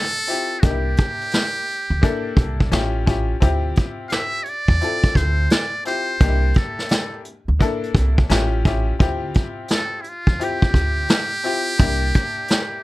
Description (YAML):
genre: hip hop, jazz-hop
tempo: 86 BPM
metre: 4/4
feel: swing 65% on 16ths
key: D minor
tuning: A4 = 440 Hz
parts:
  - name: trumpet with metal mute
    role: melody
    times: 0.0-12.8 s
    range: E4 to F5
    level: -24 LUFS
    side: equal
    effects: none
  - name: bright upright piano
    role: accompaniment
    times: 0.3-12.8 s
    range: Bb3 to A4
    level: -26 LUFS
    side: left 4 dB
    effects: none
  - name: vintage brush drum kit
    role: drums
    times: 0.3-12.7 s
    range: hi-hat, kick drum, snare drum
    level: -18 LUFS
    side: equal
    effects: none
  - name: upright bass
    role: bass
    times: 0.6-12.1 s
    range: A1 to E2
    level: -20 LUFS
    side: equal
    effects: none
room: little or no reverb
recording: none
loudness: -17 LUFS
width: side -18 dB against mid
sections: 0.0-12.8 A section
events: none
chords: 0.0 Dm11 (rootless); 0.6 C7; 2.7 A7b13; 3.4 Dm11; 6.2 C7; 8.3 A7b13; 9.0 Dm11; 11.8 C7